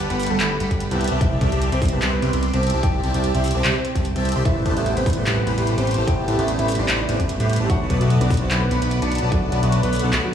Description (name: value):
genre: future bass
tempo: 148 BPM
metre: 4/4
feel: swing 54% on 16ths, half-time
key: unclear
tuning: A4 = 440 Hz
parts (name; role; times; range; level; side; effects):
- big bright polysynth; riff; 0.0-10.2 s; G3 to C6; -25 LUFS; equal; phaser, wide subtle chorus, sidechain pumping, digital delay
- fat analog bass; bass; 0.0-10.2 s; G1 to A2; -22 LUFS; equal; sidechain pumping
- warm grand piano; melody; 0.1-10.3 s; F#3 to G5; -27 LUFS; equal; sidechain pumping, dub echo
- pop drum kit; drums; 0.1-10.2 s; handclaps, hi-hat; -27 LUFS; equal; overdrive
- electronic kick drum; drums; 0.7-9.4 s; none; -22 LUFS; equal; none
- barky tine electric piano; accompaniment; 4.4-10.3 s; C3 to F#4; -26 LUFS; right 3 dB; overdrive, phaser, sidechain pumping, digital delay
room: light reverb, digital ambience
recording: played on a big sound system in a bare room, large studio reverb, small room ambience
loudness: -18 LUFS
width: side -9 dB against mid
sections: 0.0-10.3 A section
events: none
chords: 0.0 Gmaj9; 1.0 C69; 4.5 Am7; 7.7 Bm7